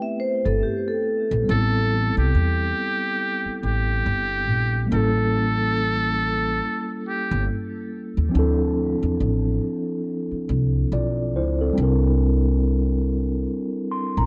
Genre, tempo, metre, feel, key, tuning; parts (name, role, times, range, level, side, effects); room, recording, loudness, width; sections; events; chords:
lo-fi hip hop; 70 BPM; 4/4; swing 59% on 16ths; A minor; A4 = 440 Hz
vibraphone with medium hard mallets; second line; 0.0-1.5 s; G4 to E5; -27 LUFS; equal; low-pass filter, analog delay
mellow tine electric piano; accompaniment; 0.0-14.3 s; F3 to C6; -27 LUFS; equal; low-pass filter
upright bass; bass; 0.5-14.3 s; G1 to E2; -24 LUFS; equal
trumpet with metal mute; melody; 1.5-7.5 s; G4 to A4; -27 LUFS; equal; low-pass filter
light reverb, studio reverb; nothing above 11.0 kHz; -22 LUFS; mono
0.0-1.5 A section; 1.5-14.3 A section
0.0 Am7; 4.9 A7b9; 8.3 Dm9; 11.8 C9